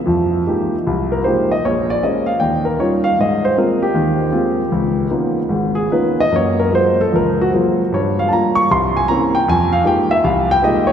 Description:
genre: solo jazz.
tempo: 154 BPM.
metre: 4/4.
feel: swing 66% on 8ths, rubato.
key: F minor.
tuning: A4 = 440 Hz.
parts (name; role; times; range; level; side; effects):
dark grand piano; solo; 0.1-10.9 s; Ab1 to Db6; -14 LUFS; equal; none.
room: wet cathedral reverb, RT60 5.5 s.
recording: recorded in a church or concert hall.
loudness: -14 LUFS.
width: side -8 dB against mid.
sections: 0.1-10.9 A section.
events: grand piano solo 0.1-10.9.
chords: 0.1 Fm11; 1.6 Bbm7; 2.4 Eb9; 3.2 Ab69; 4.7 Db13; 6.3 Gbmaj9; 7.9 Gm7b5; 8.7 C7b9; 9.5 Fm11.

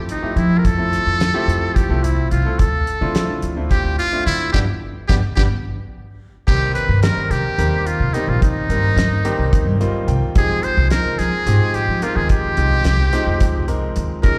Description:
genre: electric jazz fusion.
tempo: 216 BPM (eighths).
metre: 7/8.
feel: straight.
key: unclear.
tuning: A4 = 440 Hz.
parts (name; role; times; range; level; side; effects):
bright concert grand piano; accompaniment; 0.0-14.4 s; Eb3 to G5; -27 LUFS; equal; slapback echo.
upright bass; bass; 0.0-14.4 s; G1 to F3; -21 LUFS; equal; none.
trumpet with metal mute; melody; 0.1-14.4 s; Eb4 to C5; -24 LUFS; equal; slapback echo.
damped 70s drum kit; drums; 0.1-14.4 s; crash cymbal, hi-hat, kick drum, snare drum; -21 LUFS; equal; none.
room: little or no reverb.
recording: live gig heard through the venue's PA, recital hall reverb.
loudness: -18 LUFS.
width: mono.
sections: 0.0-6.5 A section; 6.5-14.4 B section.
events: band accent 4.5-6.5; grand piano fill 9.5-10.4.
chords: 0.0 Fmaj9; 2.6 Dm9; 4.5 G; 6.5 Cm7; 10.4 Fm9.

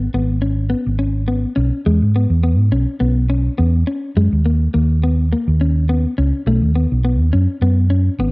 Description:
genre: highlife guitar band.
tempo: 104 BPM.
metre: 4/4.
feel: straight.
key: E major.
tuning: A4 = 440 Hz.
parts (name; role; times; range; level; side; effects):
clean electric guitar; accompaniment; 0.0-8.3 s; G#3 to C#4; -20 LUFS; left 2 dB; spring reverb, cassette tape.
hollow-body short-scale fingered electric bass; bass; 0.0-8.3 s; G#1 to G#2; -15 LUFS; equal; none.
room: light reverb.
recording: home recording on cassette.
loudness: -14 LUFS.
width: side -25 dB against mid.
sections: 0.0-8.3 A section.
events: none.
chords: 0.0 N.C.; 1.9 E; 4.2 F# (rootless); 6.5 B.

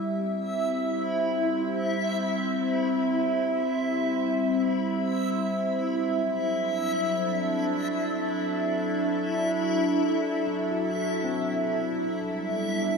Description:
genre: ambient.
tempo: free time.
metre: none.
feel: none.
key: unclear.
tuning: A4 = 437 Hz.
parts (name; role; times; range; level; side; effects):
evolving wavetable pad; sustained chords; 0.0-13.0 s; F#3 to E5; -25 LUFS; equal; chorus, built-in reverb, phaser.
backwards swelling texture; texture; 0.5-13.0 s; E4 to E5; -32 LUFS; left 1 dB; built-in reverb.
overdriven tine electric piano; arpeggios; 0.2-12.1 s; C4 to A4; -39 LUFS; left 2 dB; ping-pong delay.
room: wet huge ambient reverb, RT60 8.5 s.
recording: in a vast, echoing space.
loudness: -24 LUFS.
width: side -5 dB against mid.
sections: 0.0-13.0 A section.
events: fade-in on tine electric piano 0.0-13.0; fade-out on synth texture 0.0-13.0.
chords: 0.0 C; 5.9 Dadd9; 12.0 Em.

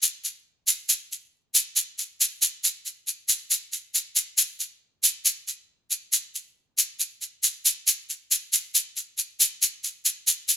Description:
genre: bossa nova.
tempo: 138 BPM.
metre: 4/4.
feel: straight.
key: none.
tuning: none.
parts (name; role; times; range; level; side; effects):
egg shaker; percussion; 0.0-10.6 s; none; -20 LUFS; equal; none.
room: light reverb.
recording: dark, warm production.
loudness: -22 LUFS.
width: side -10 dB against mid.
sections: 0.0-7.0 A section; 7.0-10.6 B section.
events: none.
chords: none.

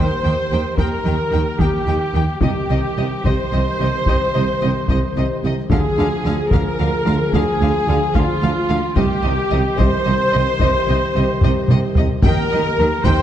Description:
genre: cinematic, epic orchestral film score.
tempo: 73 BPM (dotted quarters).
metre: 12/8.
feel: straight.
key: C minor.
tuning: A4 = 441 Hz.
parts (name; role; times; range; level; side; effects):
warm symphonic violin section; melody; 0.0-13.2 s; Bb4 to G5; -30 LUFS; left 5 dB; none.
warm symphonic violin section; second line; 0.0-13.2 s; F4 to C5; -28 LUFS; left 3 dB; none.
clear studio viola section; accompaniment; 0.0-13.2 s; F4 to C5; -26 LUFS; equal; none.
warm French horn section; sustained chords; 0.0-13.2 s; Eb3 to Ab4; -27 LUFS; left 2 dB; none.
mellow trumpet; stabs; 0.0-13.2 s; F4 to C5; -23 LUFS; equal; none.
clear symphonic double bass section; bass; 0.0-13.1 s; C2 to Eb2; -22 LUFS; right 2 dB; none.
mellow tuba; bass; 0.0-13.2 s; C2 to Eb2; -24 LUFS; right 3 dB; none.
rich symphonic cello section; bass; 0.0-13.1 s; C3 to Eb3; -24 LUFS; right 1 dB; none.
taiko ensemble; drums; 0.8-13.2 s; none; -20 LUFS; left 1 dB; none.
room: wet scoring stage reverb, RT60 1.8 s.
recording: dark, warm production.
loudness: -15 LUFS.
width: side -10 dB against mid.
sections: 0.0-13.2 A section.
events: drum fill 11.4-12.2.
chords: 0.0 Eb; 2.4 Cm; 5.7 Ddim; 9.0 Cm; 12.2 Eb.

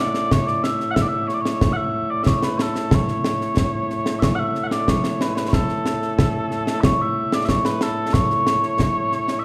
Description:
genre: scottish traditional, Scottish pipe music.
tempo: 92 BPM.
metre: 2/4.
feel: straight.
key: A major.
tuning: A4 = 442 Hz.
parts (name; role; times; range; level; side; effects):
mellow small bagpipes; melody; 0.0-9.4 s; A2 to F#5; -24 LUFS; equal; none.
concert snare drum and concert bass drum; drums; 0.1-9.4 s; none; -24 LUFS; equal; none.
room: moderate recital hall reverb, RT60 1.4 s.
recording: heard from further back in the room.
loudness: -21 LUFS.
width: mono.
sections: 0.0-6.8 A section; 6.8-9.4 A section.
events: none.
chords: none.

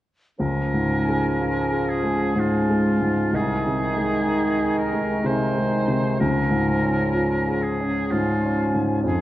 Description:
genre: classical, romantic movement for piano and orchestra.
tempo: 62 BPM.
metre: 3/4.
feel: rubato.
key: Db major.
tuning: A4 = 445 Hz.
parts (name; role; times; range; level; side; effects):
warm grand piano; melody; 0.4-9.2 s; C2 to Ab4; -22 LUFS; left 1 dB; none.
clear oboe; second line; 0.4-9.2 s; F4 to C5; -28 LUFS; right 1 dB; none.
concert flute; second line; 0.4-9.2 s; Ab5; -32 LUFS; equal; none.
warm clarinet; second line; 0.4-9.2 s; Db4 to Eb4; -29 LUFS; right 1 dB; none.
mellow bassoon; accompaniment; 0.4-9.2 s; Eb3 to F3; -27 LUFS; right 1 dB; none.
room: wet concert hall reverb, RT60 1.9 s.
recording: worn, warbling old tape, cassette tape, warbly pitch drift.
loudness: -20 LUFS.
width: side -14 dB against mid.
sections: 0.4-9.2 A section.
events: none.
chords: 0.4 Db; 3.3 Ab/C; 6.2 Db.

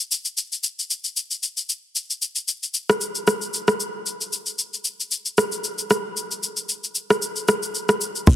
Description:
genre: amapiano.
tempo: 114 BPM.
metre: 4/4.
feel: swing 55% on 16ths.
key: unclear.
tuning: A4 = 440 Hz.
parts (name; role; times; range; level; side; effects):
deep house drum kit; drums; 0.0-8.4 s; crash cymbal, kick drum, rim click, shaker; -21 LUFS; equal; none.
deep log drum bass; bass; 8.3-8.4 s; Bb1; -12 LUFS; equal; none.
room: light reverb.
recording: dense, heavily limited modern master.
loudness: -22 LUFS.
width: side -12 dB against mid.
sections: 0.0-8.3 A section.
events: none.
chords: none.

